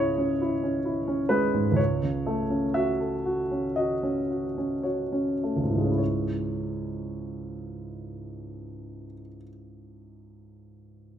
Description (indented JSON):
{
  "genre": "classical, romantic character piece for solo piano",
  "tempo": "48-67 BPM",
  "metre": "4/4",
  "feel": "rubato",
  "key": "C# minor",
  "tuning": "A4 = 441 Hz",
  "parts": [
    { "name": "warm baby grand piano", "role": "solo", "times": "0.0-11.2 s", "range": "C#2 to E5", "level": "-26 LUFS", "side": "equal", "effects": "none" }
  ],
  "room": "moderate large studio reverb, RT60 1.3 s",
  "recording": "minimal, uncompressed stereo recording",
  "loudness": "-25 LUFS",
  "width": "side -10 dB against mid",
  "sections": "0.0-6.0 A section; 6.0-10.0 B section",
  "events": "slowing down 0.0-6.0",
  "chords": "0.0 C#m; 1.8 F#m/C#; 6.0 C#m"
}